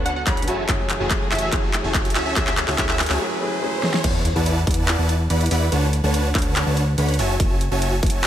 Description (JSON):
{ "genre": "future bass", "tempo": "143 BPM", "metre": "4/4", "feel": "half-time", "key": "unclear", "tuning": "A4 = 435 Hz", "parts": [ { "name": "warm baby grand piano", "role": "accompaniment", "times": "0.0-4.1 s", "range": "F#3 to A4", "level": "-29 LUFS", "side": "left 1 dB", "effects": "sidechain pumping, digital delay" }, { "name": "warm studio string section", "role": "sustained chords", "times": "0.0-3.2 s", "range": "D3 to A4", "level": "-34 LUFS", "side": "left 1 dB", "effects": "sidechain pumping" }, { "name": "supersaw chords", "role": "riff", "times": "0.0-8.3 s", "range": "D4 to B5", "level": "-25 LUFS", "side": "right 1 dB", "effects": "sidechain pumping, low-pass filter, digital delay" }, { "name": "fat analog bass", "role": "bass", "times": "0.0-8.3 s", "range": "F#1 to E2", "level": "-22 LUFS", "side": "equal", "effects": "sidechain pumping" }, { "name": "riser and sub drop", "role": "sound effects", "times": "0.4-5.7 s", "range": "none", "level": "-31 LUFS", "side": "equal", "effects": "none" }, { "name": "plucky unison lead", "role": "melody", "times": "0.1-3.0 s", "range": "E5 to B5", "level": "-29 LUFS", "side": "right 1 dB", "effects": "sidechain pumping, tape echo" }, { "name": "big-room dance drum kit", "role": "drums", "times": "0.1-8.3 s", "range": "crash cymbal, handclaps, hi-hat, snare drum", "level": "-24 LUFS", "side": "equal", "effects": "overdrive" }, { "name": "electronic kick drum", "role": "drums", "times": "0.3-8.1 s", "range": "none", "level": "-23 LUFS", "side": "equal", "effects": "overdrive" } ], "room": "light reverb, digital ambience", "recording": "none", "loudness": "-18 LUFS", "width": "side -11 dB against mid", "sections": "0.0-4.0 A section; 4.0-8.3 B section", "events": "build-up 0.0-4.0; drum fill 0.0-3.2, 3.8; filter sweep on string section 0.0-4.0; riser 0.4-4.0; break 3.2-4.0; drop 4.0-8.3; impact 4.0-5.7", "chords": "0.5 F#m9; 2.2 Dmaj7; 4.0 E9sus4; 5.7 Bm7/D; 7.2 F#m9", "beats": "0.27 | 0.69 1.10 1.52 1.95 | 2.36 2.78 3.20 3.62 | 4.04 4.46 4.88 5.30 | 5.72 6.14 6.56 6.98 | 7.40 7.82 8.24" }